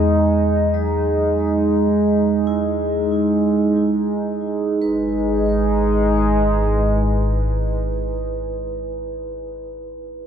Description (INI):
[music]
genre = ambient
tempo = free time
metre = none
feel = none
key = G# minor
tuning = A4 = 440 Hz
[part]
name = deep rumbling drone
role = bass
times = 0.0-7.4 s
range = G#1 to E2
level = -24 LUFS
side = left 1 dB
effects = built-in reverb
[part]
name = analog drone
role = drone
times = 0.0-8.1 s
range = G#3 to D#4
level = -18 LUFS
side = right 1 dB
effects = chorus
[part]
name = vibraphone with medium hard mallets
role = arpeggios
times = 0.7-10.3 s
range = F#3 to B4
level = -30 LUFS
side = right 3 dB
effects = diffuse ambient delay
[sound]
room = wet cathedral reverb, RT60 5.2 s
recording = in a vast, echoing space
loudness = -17 LUFS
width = side -8 dB against mid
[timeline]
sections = 0.0-4.8 A section; 4.8-8.3 B section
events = fade-out on vibraphone 0.0-4.8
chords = 0.0 Emaj7; 4.8 G#m